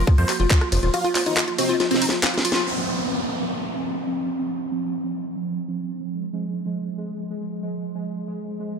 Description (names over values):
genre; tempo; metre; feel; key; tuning
psychedelic trance; 139 BPM; 4/4; straight; F minor; A4 = 444 Hz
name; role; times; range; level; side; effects
pulsing gated texture; sustained chords; 0.0-8.8 s; F3 to C4; -28 LUFS; right 2 dB; chorus, built-in reverb, sidechain pumping
woody wave-folded pluck; riff; 0.0-2.6 s; Eb4 to F5; -25 LUFS; left 2 dB; chorus, auto-pan, sidechain pumping, dub echo
round analog bass; bass; 0.0-0.9 s; Eb1 to F2; -20 LUFS; equal; tube saturation
electronic kick drum; drums; 0.1-0.6 s; none; -17 LUFS; equal; none
garage drum kit; drums; 0.1-2.6 s; handclaps, hi-hat, ride cymbal, rim click, snare drum; -23 LUFS; equal; none
dense compressed supersaw; melody; 0.2-2.0 s; C4 to C5; -26 LUFS; equal; phaser, sidechain pumping, dub echo
formant-sweep wobble bass; second line; 0.7-2.0 s; C4 to Eb4; -36 LUFS; left 2 dB; lush chorus, vintage 12-bit sampler grit, sidechain pumping, high-pass filter, tape echo
downlifter; sound effects; 2.7-6.1 s; none; -28 LUFS; right 1 dB; none
room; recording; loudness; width
moderate plate reverb, RT60 1.9 s; none; -21 LUFS; side -6 dB against mid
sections
0.0-2.7 A section; 2.7-8.8 B section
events
drop 0.0-2.7; drum fill 1.8-2.7; band accent 2.5; filter sweep on synth texture 2.7-8.8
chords
0.0 F5